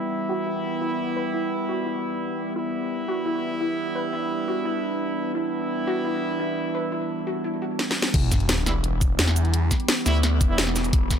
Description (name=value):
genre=dark technical drum and bass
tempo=172 BPM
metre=4/4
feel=straight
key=E minor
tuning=A4 = 440 Hz
part: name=metallic inharmonic drone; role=sustained chords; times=0.0-11.2 s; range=E3 to G4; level=-30 LUFS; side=equal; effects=chorus, built-in reverb, sidechain pumping
part: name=mellow brass ensemble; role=stabs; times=0.0-10.6 s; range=G3 to E4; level=-28 LUFS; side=right 2 dB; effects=ping-pong delay
part: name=soft round pluck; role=arpeggios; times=0.3-7.8 s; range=E4 to B4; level=-31 LUFS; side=left 1 dB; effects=lush chorus, sidechain pumping, ping-pong delay
part: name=drum and bass drum kit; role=drums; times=7.8-11.2 s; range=crash cymbal, hi-hat, shaker, snare drum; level=-24 LUFS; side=left 1 dB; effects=none
part: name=phased detuned saw bass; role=bass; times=8.1-11.2 s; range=E1 to E2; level=-23 LUFS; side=equal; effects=phaser, overdrive, sidechain pumping
part: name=electronic kick drum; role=drums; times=8.1-11.2 s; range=none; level=-22 LUFS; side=equal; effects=none
part: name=sub drop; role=sound effects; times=8.1-9.5 s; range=none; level=-28 LUFS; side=left 1 dB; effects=none
room=light reverb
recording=none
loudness=-22 LUFS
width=side -8 dB against mid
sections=0.0-8.1 A section; 8.1-11.2 B section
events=filter sweep on synth pluck 0.0-8.1; drum fill 7.8-8.1; drop 8.1-11.2; impact 8.1-9.5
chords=0.0 Em